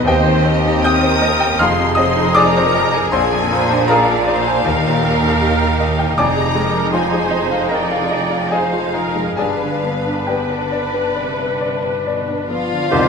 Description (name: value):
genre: classical, romantic movement for piano and orchestra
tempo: 66-81 BPM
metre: 4/4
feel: rubato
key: unclear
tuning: A4 = 441 Hz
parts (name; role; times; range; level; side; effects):
- clear grand piano; melody; 0.0-13.1 s; Bb1 to G6; -17 LUFS; left 2 dB; none
- warm symphonic violin section; melody; 0.0-13.1 s; D5 to Eb6; -24 LUFS; left 4 dB; none
- warm symphonic violin section; second line; 0.0-13.1 s; C4 to B4; -22 LUFS; left 1 dB; none
- warm symphonic viola section; accompaniment; 0.0-13.1 s; F4 to D5; -22 LUFS; right 4 dB; none
- warm symphonic double bass section; bass; 0.0-13.1 s; F1 to Eb2; -26 LUFS; right 4 dB; none
- rich symphonic cello section; bass; 0.1-13.1 s; Eb2 to F3; -24 LUFS; right 4 dB; none
- large flute ensemble; second line; 12.5-13.1 s; D5; -24 LUFS; left 3 dB; none
- clear clarinet; second line; 12.9-13.1 s; G4; -20 LUFS; equal; none
- warm cor anglais; second line; 12.9-13.1 s; C5; -20 LUFS; right 2 dB; none
- mellow bassoon; accompaniment; 12.9-13.1 s; Eb3; -20 LUFS; right 4 dB; none
- clear trombone section; sustained chords; 12.9-13.1 s; Eb3 to G3; -25 LUFS; right 4 dB; none
- dark French horn section; sustained chords; 12.9-13.1 s; C4 to G4; -23 LUFS; left 5 dB; none
- clear trumpet; stabs; 12.9-13.1 s; C5; -24 LUFS; equal; none
room: wet recital hall reverb, RT60 1.6 s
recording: minimal, uncompressed stereo recording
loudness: -14 LUFS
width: side -6 dB against mid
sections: 0.0-12.9 A section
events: none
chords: 0.1 Cm/Eb; 1.6 Fm7; 3.1 Bb7; 4.7 Eb; 6.2 Fm7; 9.4 G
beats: | 0.06 0.85 1.60 2.35 | 3.11 3.89 4.66 5.42 | 6.17 6.93 7.70 8.51 | 9.37 10.27 11.16 12.06 | 12.91